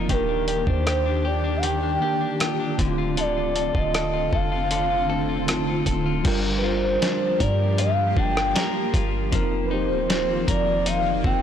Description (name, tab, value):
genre	contemporary R&B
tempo	78 BPM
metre	4/4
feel	straight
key	G minor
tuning	A4 = 440 Hz
part	mellow tine electric piano	accompaniment	0.0-11.4 s	D3 to Bb4	-28 LUFS	right 1 dB	medium stereo tremolo
part	granular cloud pad	sustained chords	0.0-11.4 s	D3 to G4	-30 LUFS	equal	built-in reverb, sidechain pumping
part	clean electric guitar	arpeggios	0.0-11.4 s	D3 to Bb4	-30 LUFS	left 7 dB	digital delay
part	warm 808-style bass	bass	0.0-11.4 s	D1 to G2	-27 LUFS	equal	none
part	gliding portamento lead	melody	0.1-11.4 s	Bb4 to G5	-25 LUFS	right 1 dB	chorus, phaser
part	dusty soul sampler-style drum kit	drums	0.1-11.4 s	crash cymbal, hi-hat, kick drum, rim click, snare drum	-26 LUFS	equal	none
room	light reverb, digital ambience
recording	blown-out, overdriven recording, overdrive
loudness	-20 LUFS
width	side -9 dB against mid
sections	0.0-6.2 A section; 6.2-11.4 B section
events	none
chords	0.1 Ebmaj7; 2.8 Dm7; 6.2 Gm7; 9.3 F7sus4